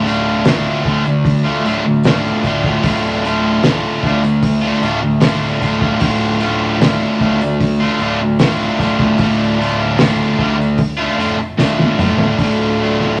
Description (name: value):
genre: psychedelic rock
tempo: 75 BPM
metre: 4/4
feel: straight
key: D minor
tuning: A4 = 435 Hz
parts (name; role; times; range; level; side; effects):
- cranked stack guitar; riff; 0.0-13.2 s; D2 to F4; -17 LUFS; equal; overdrive
- fretless electric bass; bass; 0.0-13.2 s; D1 to D2; -28 LUFS; equal; none
- tambourine; percussion; 0.1-12.3 s; none; -42 LUFS; equal; none
- cloth-damped thuddy drum kit; drums; 0.5-13.1 s; hi-hat, kick drum, snare drum, toms; -20 LUFS; equal; none
- pedal harmonium; drone; 12.4-13.2 s; D2; -24 LUFS; equal; none
room: moderate large studio reverb, RT60 1.3 s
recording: none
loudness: -15 LUFS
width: mono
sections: 0.0-12.4 A section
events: drum fill 11.6-12.4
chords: 0.0 Dm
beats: 0.45 1.25 2.04 | 2.84 3.64 4.43 5.23 | 6.02 6.82 7.61 8.41 | 9.21 10.00 10.80 11.59 | 12.39 13.19